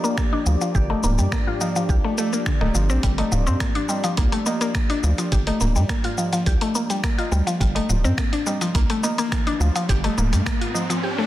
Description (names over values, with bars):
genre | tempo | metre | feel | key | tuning
organic downtempo | 105 BPM | 4/4 | straight | G minor | A4 = 440 Hz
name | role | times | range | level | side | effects
warm analog pad | sustained chords | 0.0-11.0 s | F3 to D5 | -32 LUFS | left 1 dB | wide subtle chorus, sidechain pumping
mallet-like synth pluck | arpeggios | 0.0-11.3 s | D3 to G4 | -24 LUFS | left 1 dB | chorus, digital delay
dusty soul sampler-style drum kit | drums | 0.0-11.0 s | finger snaps, hi-hat, shaker | -29 LUFS | left 1 dB | soft clipping on snare
electronic kick drum | drums | 0.2-10.6 s | none | -23 LUFS | equal | overdrive
tabla | percussion | 0.3-10.9 s | none | -32 LUFS | right 1 dB | none
round analog bass | bass | 0.5-10.4 s | D1 to G2 | -20 LUFS | equal | sidechain pumping
riser | sound effects | 9.0-11.3 s | none | -30 LUFS | equal | none
room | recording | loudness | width
light reverb | dense, heavily limited modern master | -19 LUFS | side -14 dB against mid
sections
0.0-11.3 A section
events
riser 9.0-11.3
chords
0.0 Gm7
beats
0.18 | 0.75 1.32 1.89 2.46 | 3.03 3.60 4.18 4.75 | 5.32 5.89 6.46 7.03 | 7.61 8.18 8.75 9.32 | 9.89 10.46 11.03